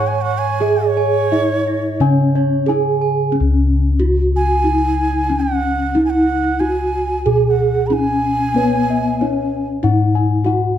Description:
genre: Javanese gamelan.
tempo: 91 BPM.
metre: 4/4.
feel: uneven beats.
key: C# slendro.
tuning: A4 = 439 Hz.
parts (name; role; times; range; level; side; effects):
gamelan-type bronze metallophone; melody; 0.0-10.8 s; B3-25c to C#5; -18 LUFS; right 1 dB; none.
breathy bansuri; second line; 0.0-9.7 s; C#5 to B5-20c; -21 LUFS; right 2 dB; slapback echo.
gamelan-type bossed gongs; arpeggios; 0.0-3.1, 8.6-10.8 s; C#5 to C#6; -25 LUFS; left 6 dB; none.
gamelan-type bronze metallophone; arpeggios; 0.0-3.3 s; C#5 to C#6; -25 LUFS; right 5 dB; none.
gamelan-type bossed gongs; bass; 0.0-10.8 s; C#2 to B4-25c; -18 LUFS; left 2 dB; none.
room: moderate recital hall reverb, RT60 1.6 s.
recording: close, detailed microphones.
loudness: -14 LUFS.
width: side -10 dB against mid.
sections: 0.0-3.4 A section; 3.4-10.8 B section.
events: none.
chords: none.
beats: | 0.62 1.33 2.02 2.70 | 3.36 4.01 4.66 5.31 | 5.96 6.62 7.27 7.92 | 8.57 9.22 9.85 10.47.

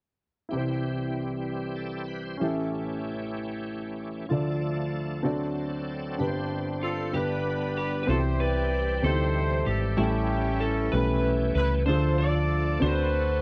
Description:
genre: gospel.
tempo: 63 BPM (dotted quarters).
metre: 6/8.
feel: straight.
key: C major.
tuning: A4 = 439 Hz.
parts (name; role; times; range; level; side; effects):
warm baby grand piano; accompaniment; 0.5-13.4 s; G1 to E5; -32 LUFS; equal; none.
bright tonewheel organ; sustained chords; 0.5-13.4 s; D3 to C5; -37 LUFS; equal; slow rotary speaker, overdrive, chorus vibrato.
electric slide guitar; melody; 6.8-13.4 s; E4 to D5; -33 LUFS; equal; slapback echo.
warm horn section; melody; 6.8-13.4 s; C#4 to D5; -35 LUFS; equal; none.
hollow-body short-scale fingered electric bass; bass; 8.1-13.4 s; Ab1 to D2; -29 LUFS; equal; none.
room: little or no reverb.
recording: dry, close 1970s-style studio recording.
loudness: -28 LUFS.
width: mono.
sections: 0.5-8.1 A section; 8.1-13.4 B section.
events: none.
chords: 0.5 C; 2.4 A7; 4.3 Dm; 5.2 D7; 6.2 Gsus4; 7.1 G; 8.1 C; 10.0 A7; 11.9 Dm; 12.8 D7.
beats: | 0.52 1.47 | 2.41 3.36 | 4.30 5.25 | 6.19 7.14 | 8.09 9.03 | 9.98 10.92 | 11.87 12.82.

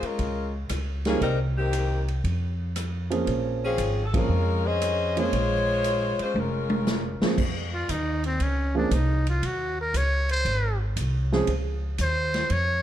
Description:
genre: jazz, big band swing.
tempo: 117 BPM.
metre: 4/4.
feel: swing 69% on 8ths.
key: Bb minor.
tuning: A4 = 438 Hz.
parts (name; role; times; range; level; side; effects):
warm saxophone section; melody; 0.0-7.2 s; Eb3 to Eb5; -26 LUFS; left 2 dB; none.
upright bass; bass; 0.0-12.8 s; F1 to F2; -27 LUFS; equal; none.
swinging big-band drum kit; drums; 0.0-12.7 s; crash cymbal, hi-hat, kick drum, ride cymbal, rim click, snare drum, toms; -32 LUFS; equal; none.
warm grand piano; accompaniment; 1.1-11.5 s; F3 to Bb4; -28 LUFS; right 4 dB; none.
trumpet with metal mute; melody; 7.7-12.8 s; C4 to Db5; -27 LUFS; equal; none.
room: light reverb.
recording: dark, warm production.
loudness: -23 LUFS.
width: side -11 dB against mid.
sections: 0.0-7.4 A section; 7.4-12.8 B section.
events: band accent 4.0; drum fill 6.3-7.4; muted trumpet solo 7.4-12.8.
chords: 0.0 Gbmaj9 (rootless); 1.2 Cm7; 2.2 Bbm9; 7.4 Bbmadd9 (rootless); 9.4 Gb5; 10.5 Ab; 11.5 Dbmaj7.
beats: 0.19 0.70 | 1.22 1.73 2.24 2.75 | 3.27 3.78 4.29 4.81 | 5.32 5.83 6.35 6.86 | 7.38 7.89 8.40 8.92 | 9.43 9.94 10.46 10.97 | 11.48 11.99 12.51.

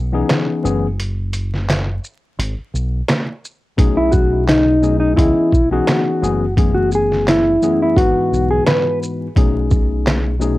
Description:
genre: hip hop, boom-bap hip-hop.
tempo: 86 BPM.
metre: 4/4.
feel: swing 56% on 16ths.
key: unclear.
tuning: A4 = 440 Hz.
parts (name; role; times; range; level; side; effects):
deep dub fingered electric bass; bass; 0.0-10.6 s; F#1 to C#2; -20 LUFS; equal; none.
tine electric piano; accompaniment; 0.1-10.6 s; F#2 to D#5; -20 LUFS; left 4 dB; cassette tape, high-pass filter, low-pass filter.
trip hop sampler-style drum kit; drums; 0.3-10.6 s; handclaps, hi-hat, kick drum, shaker, snare drum; -17 LUFS; equal; cassette tape.
mellow electric guitar; melody; 4.0-9.0 s; D#4 to B4; -15 LUFS; equal; high-pass filter, low-pass filter, cassette tape.
room: little or no reverb.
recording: home recording on cassette, vinyl crackle.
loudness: -14 LUFS.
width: side -17 dB against mid.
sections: 0.0-10.6 A section.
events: break 0.0-3.8.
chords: 0.0 C#m7; 0.6 F#m11; 2.4 G#m; 3.8 B13; 5.2 C#m7; 6.2 F#m11; 8.0 Emaj9/G#; 9.4 B13.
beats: 0.29 | 0.99 1.69 2.39 3.08 | 3.78 4.48 5.18 5.88 | 6.57 7.27 7.97 8.67 | 9.36 10.06.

